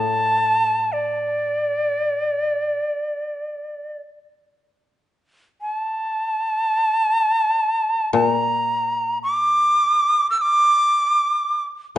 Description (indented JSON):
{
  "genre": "japanese traditional, Japanese chamber music",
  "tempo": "free time",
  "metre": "none",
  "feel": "none",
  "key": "unclear",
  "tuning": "A4 = 441 Hz",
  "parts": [
    { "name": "bright reedy shakuhachi", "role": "melody", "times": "0.0-11.6 s", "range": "D5 to E6", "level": "-18 LUFS", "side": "equal", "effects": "none" },
    { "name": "koto", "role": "accompaniment", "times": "0.0-12.0 s", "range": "A2 to Bb2", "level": "-24 LUFS", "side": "left 6 dB", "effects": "none" }
  ],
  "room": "light reverb",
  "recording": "nothing above 10.6 kHz",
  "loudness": "-18 LUFS",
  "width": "side -13 dB against mid",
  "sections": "0.0-4.2 A section; 4.2-12.0 A section",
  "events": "none",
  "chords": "none",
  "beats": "free time"
}